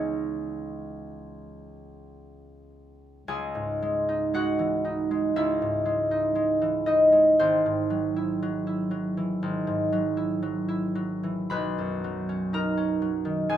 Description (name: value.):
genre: classical, solo harp piece.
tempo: 47-62 BPM.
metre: 4/4.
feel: rubato.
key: C# dorian.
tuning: A4 = 441 Hz.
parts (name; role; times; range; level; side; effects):
concert harp; solo; 0.0-13.6 s; G#1 to B5; -24 LUFS; equal; none.
room: light reverb.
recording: none.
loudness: -23 LUFS.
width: side -10 dB against mid.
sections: 0.0-3.3 A section; 3.3-13.6 B section.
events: none.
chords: 0.0 C#m9; 3.3 C#madd9; 7.4 G#aug7; 11.5 Badd9.